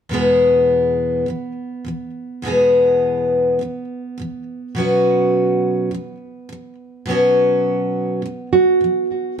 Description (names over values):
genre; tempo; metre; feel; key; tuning
pop; 104 BPM; 4/4; swing 55% on 16ths; E major; A4 = 440 Hz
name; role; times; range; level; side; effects
picked steel-string acoustic guitar; accompaniment; 0.1-9.4 s; E2 to G#4; -17 LUFS; left 1 dB; none
nylon-string guitar; melody; 8.5-9.4 s; F#4; -14 LUFS; right 4 dB; digital delay
room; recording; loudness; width
moderate studio reverb, RT60 0.9 s; dark, warm production; -15 LUFS; side -7 dB against mid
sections
0.1-9.4 A section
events
none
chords
0.1 E; 4.8 Bsus2